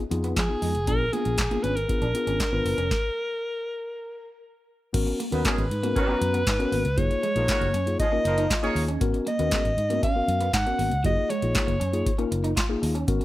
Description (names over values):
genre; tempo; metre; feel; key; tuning
early-eighties boogie funk; 118 BPM; 4/4; straight; unclear; A4 = 440 Hz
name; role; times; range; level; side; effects
mellow tine electric piano; accompaniment; 0.0-13.2 s; Bb3 to Bb5; -29 LUFS; left 4 dB; slow stereo tremolo
electric guitar at the edge of break-up; riff; 0.1-13.2 s; Gb3 to F4; -34 LUFS; right 3 dB; lush chorus
vintage muted fingered electric bass; bass; 0.1-13.2 s; F1 to F3; -28 LUFS; equal; none
booming analog drum machine; drums; 0.1-13.2 s; crash cymbal, handclaps, hi-hat, kick drum, snare drum; -27 LUFS; equal; none
breathy alto saxophone; melody; 0.4-12.3 s; Ab4 to Gb5; -27 LUFS; equal; none
dark horn section; second line; 5.3-8.8 s; Eb3 to Db5; -31 LUFS; right 2 dB; none
room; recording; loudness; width
digital ambience; none; -22 LUFS; side -16 dB against mid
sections
0.0-4.9 A section; 4.9-13.2 B section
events
stop 2.9-4.9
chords
0.0 Fm7b5; 0.9 Bb7b9; 4.9 Abm11; 7.0 Gbmaj13; 9.0 Abm11; 11.0 Gbmaj13